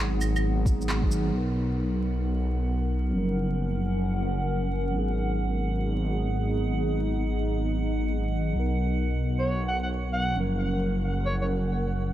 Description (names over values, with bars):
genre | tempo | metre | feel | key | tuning
future garage | 133 BPM | 4/4 | swing 66% on 16ths | G# dorian | A4 = 443 Hz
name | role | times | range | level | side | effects
mellow tine electric piano | accompaniment | 0.0-12.1 s | E#3 to A#4 | -32 LUFS | right 1 dB | medium stereo tremolo, vintage 12-bit sampler grit, sidechain pumping, tape echo
warbly tape-like pad | sustained chords | 0.0-12.1 s | F#3 to F#5 | -33 LUFS | equal | chorus, built-in reverb, sidechain pumping
swelling detuned saw bass | bass | 0.0-12.1 s | F#1 to B1 | -27 LUFS | equal | sidechain pumping
electronic shaker, claves and handclaps | drums | 0.2-1.2 s | none | -35 LUFS | right 1 dB | studio reverb
electronic kick drum | drums | 0.7-1.1 s | none | -26 LUFS | equal | studio reverb
drifting glass-harmonics texture | texture | 1.7-12.1 s | F#5 | -40 LUFS | right 6 dB | chorus, built-in reverb
growling alto saxophone | melody | 9.4-11.5 s | C#5 to F#5 | -32 LUFS | equal | tape echo
room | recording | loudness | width
little or no reverb | vinyl crackle | -24 LUFS | side -13 dB against mid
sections
0.0-1.3 A section; 1.3-12.1 B section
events
band accent 0.9; filter sweep on ambient pad 1.3-12.1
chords
0.0 G#m7; 1.3 Bmaj7; 3.1 F#maj7; 4.9 G#m7; 8.6 Bmaj7; 10.4 F#maj7